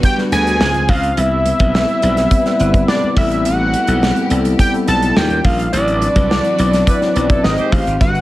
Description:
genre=polished 1980s jazz-funk pop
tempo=105 BPM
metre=4/4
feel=straight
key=unclear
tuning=A4 = 440 Hz
part: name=fat analog lead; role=melody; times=0.0-8.2 s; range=D5 to A5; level=-18 LUFS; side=equal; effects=chorus
part: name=mellow tine electric piano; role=accompaniment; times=0.0-8.2 s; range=F#3 to B#4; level=-19 LUFS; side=left 1 dB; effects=ensemble chorus
part: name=warm studio string section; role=sustained chords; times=0.0-8.2 s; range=C3 to B#4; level=-30 LUFS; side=left 1 dB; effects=none
part: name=modern studio drum kit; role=drums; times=0.0-8.2 s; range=hi-hat, kick drum, snare drum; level=-17 LUFS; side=equal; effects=gated reverb
part: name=glassy slap bass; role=bass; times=0.3-8.2 s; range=G1 to Eb2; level=-18 LUFS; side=equal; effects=none
part: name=congas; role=percussion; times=0.3-8.2 s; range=none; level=barely audible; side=none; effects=none
part: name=mellow horn section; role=second line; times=6.9-8.0 s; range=F#3 to C5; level=-27 LUFS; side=right 3 dB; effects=none
room=light reverb, small room ambience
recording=none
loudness=-12 LUFS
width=side -16 dB against mid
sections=0.0-8.2 A section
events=band accent 5.7-8.0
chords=0.0 Gmaj7; 0.6 C#maj7; 1.2 Cmaj7; 3.2 Am9; 5.2 Eb9; 5.7 D13/A; 7.4 Abmaj7

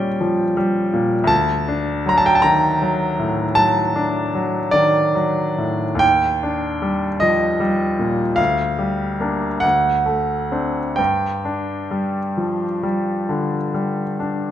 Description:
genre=classical, romantic nocturne for solo piano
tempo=42-56 BPM (dotted quarters)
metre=12/8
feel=rubato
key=G minor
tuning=A4 = 440 Hz
part: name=bright grand piano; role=solo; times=0.0-14.5 s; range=D2 to Bb5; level=-17 LUFS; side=equal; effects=none
room=moderate recital hall reverb, RT60 1.5 s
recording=none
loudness=-17 LUFS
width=side -11 dB against mid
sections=0.0-14.5 A section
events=none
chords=0.0 Eb7 (rootless); 1.3 D; 6.0 Ebmaj7; 8.4 Gm/D; 9.6 D7; 11.0 G5

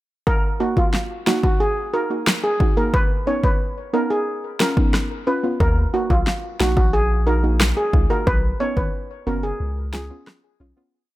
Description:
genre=dancehall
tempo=90 BPM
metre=4/4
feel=straight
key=Eb minor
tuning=A4 = 440 Hz
part: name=steel pan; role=melody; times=0.3-10.1 s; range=F4 to C#5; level=-23 LUFS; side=equal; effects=ping-pong delay
part: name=deep house drum kit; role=drums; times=0.3-10.4 s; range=kick drum, rim click, snare drum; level=-20 LUFS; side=equal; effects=none
part: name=soft round pluck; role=accompaniment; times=0.6-10.9 s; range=Bb3 to Ab4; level=-26 LUFS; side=right 2 dB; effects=chorus
part: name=punchy sub bass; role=bass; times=5.6-10.7 s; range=F#1 to Eb2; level=-21 LUFS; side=equal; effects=none
room=digital ambience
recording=none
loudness=-18 LUFS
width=side -16 dB against mid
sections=0.3-10.9 verse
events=fade-out 8.3-10.9; break 9.6-10.9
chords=0.3 Ebm; 2.9 Badd9; 4.3 Db7; 5.6 Ebm; 8.3 Badd9; 9.6 Db7

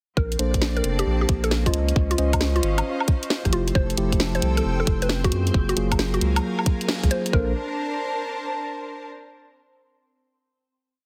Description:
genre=UK garage, two-step garage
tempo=134 BPM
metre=4/4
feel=swing 67% on 16ths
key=unclear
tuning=A4 = 439 Hz
part: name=mallet-like synth pluck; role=melody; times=0.2-7.5 s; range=F4 to C5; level=-31 LUFS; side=equal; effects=chorus, digital delay
part: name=saturated sub bass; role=bass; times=0.2-7.5 s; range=F1 to Gb2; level=-26 LUFS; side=equal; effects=none
part: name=electronic kick drum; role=drums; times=0.2-7.5 s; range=none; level=-24 LUFS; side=equal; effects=none
part: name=bright symphonic string section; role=texture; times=0.2-9.1 s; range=F3 to E6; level=-34 LUFS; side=equal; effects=sidechain pumping
part: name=garage drum kit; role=drums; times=0.3-7.3 s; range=hi-hat, rim click, snare drum, woodblock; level=-28 LUFS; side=equal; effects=none
part: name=mellow tine electric piano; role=stabs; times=0.4-7.5 s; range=F3 to Eb5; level=-30 LUFS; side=equal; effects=delay
part: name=soft string machine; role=sustained chords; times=4.3-7.3 s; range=C4 to C5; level=-41 LUFS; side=equal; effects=phaser, ensemble chorus, sidechain pumping
room=light reverb, digital ambience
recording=heavily compressed radio sound, multiband compression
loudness=-23 LUFS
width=mono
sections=0.2-7.3 drop; 7.3-9.1 final chord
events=drop 0.2-7.3; band accent 6.9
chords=0.2 Bbmaj9; 1.7 Dbmaj9; 3.5 Fmaj9; 5.3 Gbmaj9; 7.3 Bbmaj9

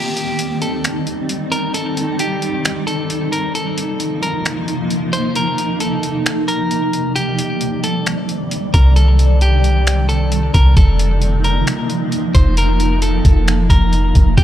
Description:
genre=hip hop, atmospheric cloud-rap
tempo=133 BPM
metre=4/4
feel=half-time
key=unclear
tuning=A4 = 439 Hz
part: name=clean electric guitar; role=melody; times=0.0-14.4 s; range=G4 to C5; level=-22 LUFS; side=left 1 dB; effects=spring reverb, ping-pong delay
part: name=granular cloud pad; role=sustained chords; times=0.0-14.4 s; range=C3 to D5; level=-20 LUFS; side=equal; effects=built-in reverb, sidechain pumping
part: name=wind-like tuned noise texture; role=texture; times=0.0-14.4 s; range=Bb3 to Eb5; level=-31 LUFS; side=equal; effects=built-in reverb
part: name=trip hop sampler-style drum kit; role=drums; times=0.2-14.4 s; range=finger snaps, hi-hat, kick drum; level=-17 LUFS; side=equal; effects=none
part: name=soft 808-style bass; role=bass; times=8.7-14.4 s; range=F1 to C2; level=-13 LUFS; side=equal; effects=none
room=digital ambience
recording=none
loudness=-14 LUFS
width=side -12 dB against mid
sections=0.0-14.4 A section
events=break 0.0-7.2; kick muted 7.2-8.1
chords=0.0 Cmadd9; 3.5 F7sus4; 7.2 Cmadd9; 10.8 F7sus4

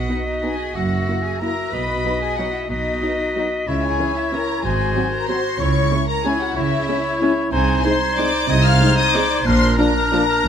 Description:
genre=classical, orchestral ballroom waltz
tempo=186 BPM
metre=3/4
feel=uneven beats, rubato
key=unclear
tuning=A4 = 442 Hz
part: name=warm studio violin section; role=melody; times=0.0-10.5 s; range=D#5 to F6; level=-25 LUFS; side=left 3 dB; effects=none
part: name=hollow concert flute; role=second line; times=0.0-10.5 s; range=F6 to B6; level=-27 LUFS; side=left 3 dB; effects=none
part: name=warm clarinet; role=second line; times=0.0-10.5 s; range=D4 to F#4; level=-27 LUFS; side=left 2 dB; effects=none
part: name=warm cor anglais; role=second line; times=0.0-10.5 s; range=Bb4 to E5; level=-26 LUFS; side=right 2 dB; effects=none
part: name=warm studio violin section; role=second line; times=0.0-10.5 s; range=D#4 to F5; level=-27 LUFS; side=left 3 dB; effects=none
part: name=rich studio cello section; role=bass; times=0.0-10.5 s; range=F#2 to C#3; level=-24 LUFS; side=right 2 dB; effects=none
part: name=rich studio double bass section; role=bass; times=0.0-10.5 s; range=F#1 to C#2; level=-24 LUFS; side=right 2 dB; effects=none
part: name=warm studio viola section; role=accompaniment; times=0.1-10.2 s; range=E3 to E4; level=-27 LUFS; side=right 2 dB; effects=none
part: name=mellow French horn section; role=sustained chords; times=0.1-10.2 s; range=A#3 to F#4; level=-27 LUFS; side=left 4 dB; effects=none
room=light reverb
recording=none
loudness=-17 LUFS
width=side -8 dB against mid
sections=0.0-10.5 A section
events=none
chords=0.0 B; 0.8 F#7; 1.7 B; 3.7 C#m; 4.6 G#7; 5.6 C#m; 7.5 Ab/C; 9.5 Bb

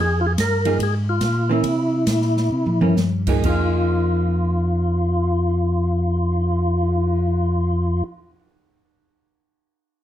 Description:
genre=soul jazz organ trio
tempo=125-147 BPM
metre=4/4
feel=swing 65% on 8ths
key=F minor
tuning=A4 = 436 Hz
part: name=percussive tonewheel organ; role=melody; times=0.0-8.0 s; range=E4 to Bb4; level=-23 LUFS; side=left 2 dB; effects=slow rotary speaker, overdrive, chorus vibrato
part: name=mellow tonewheel organ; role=bass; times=0.0-8.0 s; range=F2 to C3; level=-20 LUFS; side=equal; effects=overdrive, chorus vibrato, slow rotary speaker
part: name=open jazz drum kit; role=drums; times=0.4-7.2 s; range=crash cymbal, cymbal swell, hi-hat, kick drum, ride cymbal, snare drum, toms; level=-25 LUFS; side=left 1 dB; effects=none
part: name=vintage hollow-body jazz guitar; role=accompaniment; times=0.7-8.4 s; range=E3 to Ab4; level=-26 LUFS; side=right 5 dB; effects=none
room=light reverb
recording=none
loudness=-18 LUFS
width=side -11 dB against mid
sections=0.0-3.4 A section; 3.4-7.3 B section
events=slowing down 0.0-3.4; drum fill 2.5-3.0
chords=0.0 Fmadd9; 1.6 C7; 3.4 Fm7

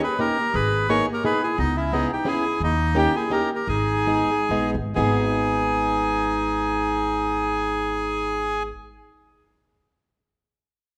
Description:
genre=musette waltz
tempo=123-175 BPM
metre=3/4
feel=swing 53% on 8ths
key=G# harmonic minor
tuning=A4 = 444 Hz
part: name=bandoneon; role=melody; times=0.0-8.6 s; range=D#4 to C#5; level=-26 LUFS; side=equal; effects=none
part: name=clear clarinet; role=second line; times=0.0-8.6 s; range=A#3 to A#4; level=-30 LUFS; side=equal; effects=none
part: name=fingerpicked plugged-in swing-style acoustic guitar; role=accompaniment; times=0.0-8.7 s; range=G#3 to G#4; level=-30 LUFS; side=equal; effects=none
part: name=upright bass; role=bass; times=0.5-8.7 s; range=G#1 to D#2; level=-31 LUFS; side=equal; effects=none
room=moderate recital hall reverb, RT60 1.7 s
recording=none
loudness=-23 LUFS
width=mono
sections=0.0-5.0 A section; 5.0-7.9 B section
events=slowing down 2.6-5.0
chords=0.0 D#7; 0.5 G#madd9; 1.6 C#m7; 2.6 D#7; 3.7 G#m

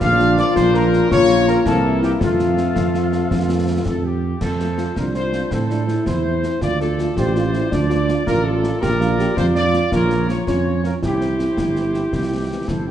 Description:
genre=military-style march for wind band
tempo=109 BPM (dotted quarters)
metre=6/8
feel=straight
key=F major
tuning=A4 = 440 Hz
part: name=clear trumpet section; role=melody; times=0.0-12.9 s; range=F4 to F5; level=-24 LUFS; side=equal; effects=none
part: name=small flute group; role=second line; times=0.0-3.8 s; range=F5 to F6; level=-25 LUFS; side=left 2 dB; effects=none
part: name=warm woodwind section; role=second line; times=0.0-12.9 s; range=E4 to D5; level=-27 LUFS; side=left 1 dB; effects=none
part: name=dark French horn section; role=accompaniment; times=0.0-12.9 s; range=E3 to F4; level=-23 LUFS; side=left 5 dB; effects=none
part: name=bright trombone section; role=sustained chords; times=0.0-4.2 s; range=E3 to D4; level=-25 LUFS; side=right 2 dB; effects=none
part: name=dark tuba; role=bass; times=0.0-12.9 s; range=G1 to A2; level=-21 LUFS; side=right 3 dB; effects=none
part: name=concert snare drum, clash cymbals and concert bass drum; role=drums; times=0.0-12.9 s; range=none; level=-26 LUFS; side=left 1 dB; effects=none
part: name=clear euphonium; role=second line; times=5.0-12.9 s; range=C4 to G4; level=-24 LUFS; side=right 2 dB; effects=none
room=moderate scoring stage reverb, RT60 1.9 s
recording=dark, warm production, nothing above 10.3 kHz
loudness=-16 LUFS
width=side -10 dB against mid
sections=0.0-4.4 A section; 4.4-12.9 A section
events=none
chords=0.0 Bb; 1.1 Bbm; 1.7 C7; 2.2 F; 5.5 Am; 6.6 Dm7; 8.8 Bb; 9.9 Bbm; 11.0 C

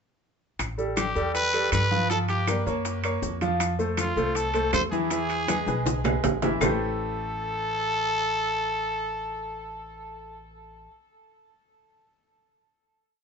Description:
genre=latin, salsa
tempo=160 BPM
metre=4/4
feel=straight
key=A minor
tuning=A4 = 440 Hz
part: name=upright bass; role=bass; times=0.6-10.9 s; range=A1 to G2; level=-32 LUFS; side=equal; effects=none
part: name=bongos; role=percussion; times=0.6-6.7 s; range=none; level=-35 LUFS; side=left 5 dB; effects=none
part: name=claves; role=percussion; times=0.6-6.7 s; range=none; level=-35 LUFS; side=left 3 dB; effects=none
part: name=congas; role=percussion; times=0.6-6.7 s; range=none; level=-34 LUFS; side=left 3 dB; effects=none
part: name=maracas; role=percussion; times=0.6-6.7 s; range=none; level=-39 LUFS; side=left 6 dB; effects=none
part: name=timbales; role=percussion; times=0.6-6.7 s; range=none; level=-30 LUFS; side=right 7 dB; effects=none
part: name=clear concert grand piano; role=accompaniment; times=0.8-10.9 s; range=E3 to F5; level=-28 LUFS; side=equal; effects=none
part: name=growling trumpet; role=melody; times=1.0-10.4 s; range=F4 to C5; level=-28 LUFS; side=equal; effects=tape echo
room=wet small room reverb, RT60 0.5 s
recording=band playing live in one room, nothing above 7.9 kHz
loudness=-24 LUFS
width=side -6 dB against mid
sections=0.6-6.6 verse; 6.6-9.6 final chord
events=drum fill 5.5-6.6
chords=0.6 Asus2; 2.1 Gm7; 2.9 F#; 3.6 Fmaj7; 5.1 E; 6.6 Am9

